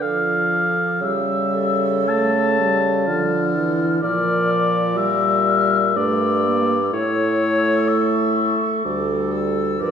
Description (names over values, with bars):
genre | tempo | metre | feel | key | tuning
classical, slow romantic movement for wind quintet | 62 BPM | 3/4 | rubato | D minor from 4.0 s | A4 = 441 Hz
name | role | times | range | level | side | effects
mellow silver concert flute | melody | 0.0-9.9 s | C#6 to F6 | -29 LUFS | left 5 dB | none
warm oboe | second line | 0.0-9.9 s | C#5 to A5 | -21 LUFS | left 3 dB | none
dark French horn | accompaniment | 0.0-9.9 s | E3 to Bb3 | -24 LUFS | left 2 dB | none
mellow clarinet | accompaniment | 0.0-9.9 s | G4 to Bb4 | -27 LUFS | right 6 dB | none
mellow bassoon | bass | 0.0-9.9 s | D2 to D3 | -22 LUFS | right 2 dB | none
room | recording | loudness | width
wet recital hall reverb, RT60 1.4 s | heard from further back in the room | -17 LUFS | side -7 dB against mid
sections
0.0-9.9 A section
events
none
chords
0.0 Dm; 1.0 A7/C#; 3.1 Dm; 4.0 Bb; 6.0 Edim/G; 6.9 A; 8.8 D5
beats
0.02 | 1.01 2.09 3.08 | 4.03 4.97 5.96 | 6.93 7.88 8.85 | 9.80